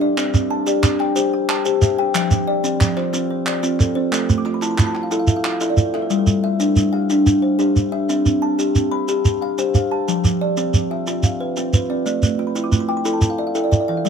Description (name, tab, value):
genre	southern african traditional, mbira-style interlocking cycle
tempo	121 BPM (dotted quarters)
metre	12/8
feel	straight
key	unclear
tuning	A4 = 444 Hz
part	kalimba	arpeggios	0.0-14.1 s	F3 to B5	-20 LUFS	left 4 dB	tape echo
part	kalimba	arpeggios	0.0-14.1 s	E3 to D6	-23 LUFS	right 5 dB	none
part	group handclap	percussion	0.2-6.0 s	none	-26 LUFS	right 2 dB	none
part	shekere	percussion	0.2-14.1 s	none	-18 LUFS	right 2 dB	none
room	light reverb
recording	close, detailed microphones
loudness	-16 LUFS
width	side -7 dB against mid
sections	0.0-6.1 A section; 6.1-14.1 A section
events	kalimba fill 4.1-6.1, 12.3-14.1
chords	0.2 C; 2.1 F; 4.1 Am; 6.1 G5; 8.1 C; 10.1 F; 12.1 Am